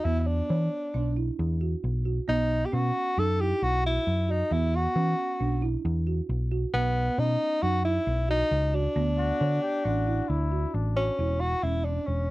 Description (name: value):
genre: progressive instrumental, progressive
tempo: 135 BPM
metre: 5/4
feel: straight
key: E dorian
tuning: A4 = 437 Hz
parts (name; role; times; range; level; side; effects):
- breathy tenor saxophone; melody; 0.0-12.3 s; B3 to A4; -28 LUFS; equal; none
- folk marimba with soft mallets; arpeggios; 0.1-12.1 s; B3 to C#5; -34 LUFS; right 6 dB; none
- hollow-body short-scale picked electric bass; bass; 0.1-12.3 s; E1 to E3; -27 LUFS; equal; none
- breathy flugelhorn; second line; 9.2-11.2 s; D4 to G4; -34 LUFS; left 4 dB; none
room: little or no reverb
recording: dry, close 1970s-style studio recording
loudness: -24 LUFS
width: side -18 dB against mid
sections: 0.0-11.2 A section; 11.2-12.3 B section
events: none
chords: 0.1 E5; 2.3 B; 4.5 E5; 6.7 B; 9.0 D6; 11.2 E5